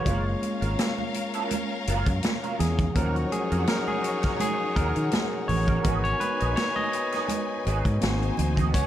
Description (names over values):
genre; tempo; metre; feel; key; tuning
lush 1970s-style soul; 83 BPM; 4/4; swing 54% on 16ths; unclear; A4 = 440 Hz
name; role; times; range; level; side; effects
rich studio string section; second line; 0.0-8.9 s; C#4 to G#5; -34 LUFS; left 3 dB; none
barky tine electric piano; accompaniment; 0.0-8.9 s; E#3 to D#5; -28 LUFS; left 1 dB; overdrive
electric guitar through a small old amp; riff; 0.0-8.9 s; F#3 to A#4; -35 LUFS; right 8 dB; wah, ensemble chorus
modern bright fingered electric bass; bass; 0.1-8.9 s; F#1 to D#3; -26 LUFS; equal; none
vintage drum kit; drums; 0.1-8.9 s; hi-hat, kick drum, snare drum; -29 LUFS; equal; none
congas; percussion; 0.1-8.9 s; none; -34 LUFS; right 6 dB; none
tambourine; percussion; 8.7-8.9 s; none; -41 LUFS; left 6 dB; none
room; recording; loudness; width
light reverb, small room ambience; none; -23 LUFS; side -11 dB against mid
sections
0.0-8.9 A section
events
tine electric piano solo 0.0-8.9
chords
0.1 F#maj7; 3.0 D#m7; 5.8 G#m7; 8.0 G#7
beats
| 0.06 0.79 1.51 2.23 | 2.96 3.68 4.40 5.13 | 5.85 6.57 7.29 8.02 | 8.74